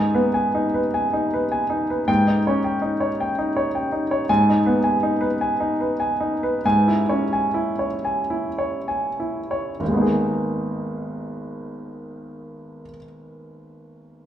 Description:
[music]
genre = classical, romantic character piece for solo piano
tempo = 31-55 BPM (dotted quarters)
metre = 6/8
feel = rubato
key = G# minor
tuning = A4 = 440 Hz
[part]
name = clear grand piano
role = solo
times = 0.0-14.3 s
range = G#1 to G#5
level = -20 LUFS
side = equal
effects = none
[sound]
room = wet large studio reverb, RT60 1.4 s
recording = heard from further back in the room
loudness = -19 LUFS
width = side -10 dB against mid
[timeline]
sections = 0.0-9.8 A section; 9.8-13.0 B section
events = slowing down 3.2-9.8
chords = 0.0 G#m; 2.1 D#7/G#; 4.3 G#m; 6.6 C#m/G#; 9.8 G#m

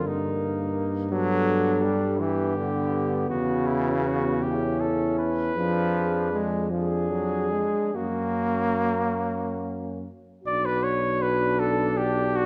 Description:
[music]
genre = classical, hymn-like piece for brass band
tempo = 47-57 BPM (dotted quarters)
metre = 6/8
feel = rubato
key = B minor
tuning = A4 = 439 Hz
[part]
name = mellow cornet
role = melody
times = 0.0-12.5 s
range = D4 to D5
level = -32 LUFS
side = equal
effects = none
[part]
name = dark French horn section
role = second line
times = 0.0-12.5 s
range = E4 to Bb4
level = -32 LUFS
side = equal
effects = none
[part]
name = clear trombone section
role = accompaniment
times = 0.0-12.5 s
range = Bb3 to D4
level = -36 LUFS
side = equal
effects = none
[part]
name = warm trombone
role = accompaniment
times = 0.0-12.5 s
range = C#3 to D4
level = -30 LUFS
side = equal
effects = none
[part]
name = mellow tuba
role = bass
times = 0.0-12.5 s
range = B1 to G2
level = -32 LUFS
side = equal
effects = none
[sound]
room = wet recital hall reverb, RT60 1.4 s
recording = dark, warm production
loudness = -25 LUFS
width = mono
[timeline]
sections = 0.0-10.4 A section; 10.4-12.5 B section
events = none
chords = 0.1 Eb/G; 1.1 G; 3.3 Esus2; 5.6 Fdim7; 7.9 F#; 10.4 Bm

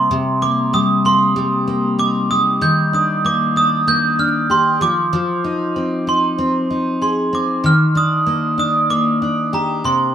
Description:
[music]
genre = indie pop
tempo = 96 BPM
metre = 4/4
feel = straight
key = Eb major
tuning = A4 = 442 Hz
[part]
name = glockenspiel with brass mallets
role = melody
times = 0.0-10.1 s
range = Bb5 to G6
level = -16 LUFS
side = right 3 dB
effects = wide subtle chorus, slapback echo
[part]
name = picked steel-string acoustic guitar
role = accompaniment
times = 0.0-10.1 s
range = C3 to Ab4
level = -18 LUFS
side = left 2 dB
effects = lush chorus, warbly pitch drift
[sound]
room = moderate studio reverb, RT60 0.6 s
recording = rough home demo mix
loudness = -14 LUFS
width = side -9 dB against mid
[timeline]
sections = 0.0-10.1 A section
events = none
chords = 0.0 Cm7; 2.6 Ebmaj7; 4.8 Fm7; 7.6 Ebmaj7

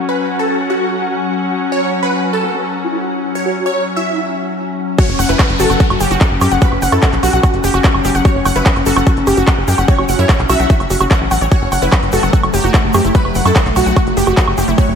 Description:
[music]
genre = psychedelic trance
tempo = 147 BPM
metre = 4/4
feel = straight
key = F# minor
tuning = A4 = 440 Hz
[part]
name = evolving wavetable pad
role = sustained chords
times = 0.0-15.0 s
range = F#3 to C#4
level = -19 LUFS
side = left 2 dB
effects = chorus, built-in reverb, sidechain pumping
[part]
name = muted studio string section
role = texture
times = 0.0-5.0 s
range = C#4 to F#5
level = -22 LUFS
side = left 2 dB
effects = sidechain pumping
[part]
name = supersaw stab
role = melody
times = 0.1-14.9 s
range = F#4 to E5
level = -21 LUFS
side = right 1 dB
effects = phaser, sidechain pumping, tape echo
[part]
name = vowel-sweep wobble bass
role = second line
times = 2.4-14.2 s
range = B3 to F#4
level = -26 LUFS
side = right 3 dB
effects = none
[part]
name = wide unison pluck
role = riff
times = 5.0-14.8 s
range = E4 to F#5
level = -19 LUFS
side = equal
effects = auto-pan, cassette tape, sidechain pumping, tape echo
[part]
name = electronic kick drum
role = drums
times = 5.0-14.9 s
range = none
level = -13 LUFS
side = equal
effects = overdrive
[part]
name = techno drum kit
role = drums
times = 5.0-14.9 s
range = handclaps, hi-hat, woodblock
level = -19 LUFS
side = right 2 dB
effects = low-pass filter on hats, low-pass filter on perc, low-pass filter on snare, low-pass filter on room
[part]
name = egg shaker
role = percussion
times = 5.0-14.9 s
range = none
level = -32 LUFS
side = left 2 dB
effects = none
[part]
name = downlifter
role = sound effects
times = 5.0-8.3 s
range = none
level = -26 LUFS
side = equal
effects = none
[part]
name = tight sequencer bass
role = bass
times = 5.1-14.9 s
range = F#1 to F#2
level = -17 LUFS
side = equal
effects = none
[sound]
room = moderate lush hall reverb, RT60 1.9 s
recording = dreamy mix soaked in reverb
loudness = -11 LUFS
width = side -7 dB against mid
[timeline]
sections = 0.0-5.0 A section; 5.0-15.0 B section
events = drop 5.0-15.0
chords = 0.0 F#5

